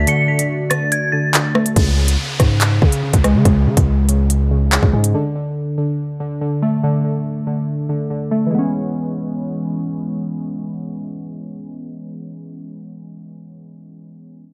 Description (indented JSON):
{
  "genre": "hip hop, drill",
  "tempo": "142 BPM",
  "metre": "4/4",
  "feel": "half-time",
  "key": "C# phrygian",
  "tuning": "A4 = 440 Hz",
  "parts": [
    { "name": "dark detuned synth bell", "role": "melody", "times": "0.0-1.7 s", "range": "G#6 to C#7", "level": "-24 LUFS", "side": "equal", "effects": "chorus, tape echo" },
    { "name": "warbly lo-fi synth keys", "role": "accompaniment", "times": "0.0-14.4 s", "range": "C#3 to C#4", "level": "-22 LUFS", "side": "equal", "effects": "chorus, phaser, low-pass filter" },
    { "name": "dark analog pad", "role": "sustained chords", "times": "0.0-1.7 s", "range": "A3 to D5", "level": "-28 LUFS", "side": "equal", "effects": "chorus" },
    { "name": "long sustained 808-style bass", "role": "bass", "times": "0.0-5.1 s", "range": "C#2 to C#3", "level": "-18 LUFS", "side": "equal", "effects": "none" },
    { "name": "drill drum kit", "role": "drums", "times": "0.1-5.1 s", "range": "handclaps, hi-hat, kick drum, rim click", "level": "-18 LUFS", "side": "equal", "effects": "none" },
    { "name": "downlifter", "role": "sound effects", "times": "1.8-5.1 s", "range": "none", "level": "-30 LUFS", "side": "equal", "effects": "none" }
  ],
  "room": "digital ambience",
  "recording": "none",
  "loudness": "-18 LUFS",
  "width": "mono",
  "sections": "0.0-1.8 A section; 1.8-8.5 B section; 8.5-11.9 C section",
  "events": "break 0.1-1.8",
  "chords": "0.0 D; 1.8 C#5; 5.1 D5; 8.5 C#m7"
}